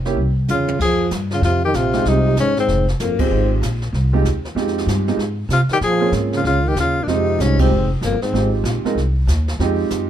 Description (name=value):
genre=jazz, small-group swing and bop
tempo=191 BPM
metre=4/4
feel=swing 62% on 8ths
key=F minor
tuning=A4 = 440 Hz
part: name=upright bass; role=bass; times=0.0-10.1 s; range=F1 to C3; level=-19 LUFS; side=equal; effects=none
part: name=clear concert grand piano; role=accompaniment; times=0.1-10.1 s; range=Ab3 to Bb4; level=-21 LUFS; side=right 5 dB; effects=none
part: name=jazz brush drum kit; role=drums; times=0.1-10.1 s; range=brushed snare drum, crash cymbal, hi-hat, kick drum, ride cymbal, snare drum, toms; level=-28 LUFS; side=equal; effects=none
part: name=breathy tenor saxophone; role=melody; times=0.5-3.5, 5.5-8.5 s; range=Bb3 to Ab4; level=-20 LUFS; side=left 4 dB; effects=none
part: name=breathy trombone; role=second line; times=0.5-8.5 s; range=F2 to F3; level=-22 LUFS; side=right 3 dB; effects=none
room=light reverb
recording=dark, warm production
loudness=-16 LUFS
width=side -10 dB against mid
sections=0.8-10.1 A section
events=drum fill 0.5-0.8; band accent 3.2, 7.6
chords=0.2 C; 0.8 Fm7; 5.8 Bbm7; 7.1 Fm7